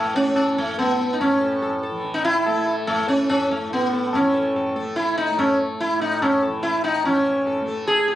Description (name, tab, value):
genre	indian classical, Hindustani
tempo	144 BPM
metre	7/4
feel	straight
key	A raga yaman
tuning	A4 = 440 Hz
part	sitar	melody	0.0-8.2 s	A3 to A4	-20 LUFS	equal	none
part	tanpura	drone	0.0-8.2 s	A2 to A3	-30 LUFS	right 1 dB	none
part	tabla	percussion	0.1-8.0 s	none	-28 LUFS	left 3 dB	none
room	light reverb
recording	recorded on a phone in the room, club reverb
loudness	-19 LUFS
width	side -13 dB against mid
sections	0.0-7.0 A section; 7.0-8.2 B section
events	none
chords	none